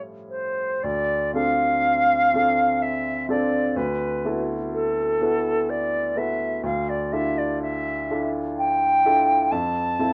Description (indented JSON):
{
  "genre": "classical, impressionist duo for flute and grand piano",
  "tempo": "62 BPM",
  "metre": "3/4",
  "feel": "rubato",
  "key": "D dorian",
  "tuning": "A4 = 439 Hz",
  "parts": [
    { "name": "clear baby grand piano", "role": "accompaniment", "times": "0.0-10.1 s", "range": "D2 to A4", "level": "-29 LUFS", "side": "equal", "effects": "none" },
    { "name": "silver concert flute", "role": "melody", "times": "0.3-10.1 s", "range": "A4 to A5", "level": "-24 LUFS", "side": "equal", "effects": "none" }
  ],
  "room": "light reverb",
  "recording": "worn, warbling old tape, cassette tape, warbly pitch drift, nothing above 7.8 kHz",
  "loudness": "-23 LUFS",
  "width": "mono",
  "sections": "0.8-10.1 A section",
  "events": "none",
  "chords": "0.0 Aaug7; 0.8 Dm7; 3.8 E9sus4/D; 6.6 Dmadd9; 9.5 Fmaj7",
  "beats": "| 0.84 1.84 2.82 | 3.76 4.73 5.69 | 6.63 7.61 8.57 | 9.52"
}